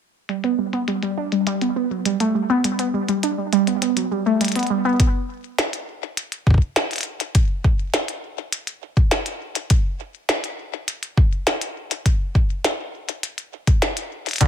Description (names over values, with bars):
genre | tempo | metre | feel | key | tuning
IDM | 102 BPM | 4/4 | straight | G major | A4 = 440 Hz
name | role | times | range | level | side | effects
warbly dusty pluck | arpeggios | 0.3-4.9, 14.4-14.5 s | D3 to D4 | -19 LUFS | right 2 dB | chorus, phaser, digital delay
glitchy drum kit | drums | 0.3-14.5 s | finger snaps, hi-hat, snare drum | -23 LUFS | left 1 dB | low-pass filter on hats, low-pass filter on snare, ping-pong delay
electronic kick drum | drums | 5.0-14.5 s | none | -16 LUFS | equal | none
icy glass pad | sustained chords | 14.4-14.5 s | none | barely audible | none | none
room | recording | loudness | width
light reverb | none | -19 LUFS | side -8 dB against mid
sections
0.3-5.0 A section; 5.0-14.5 B section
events
filter sweep on synth pluck 0.3-5.0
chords
0.3 G; 5.0 N.C.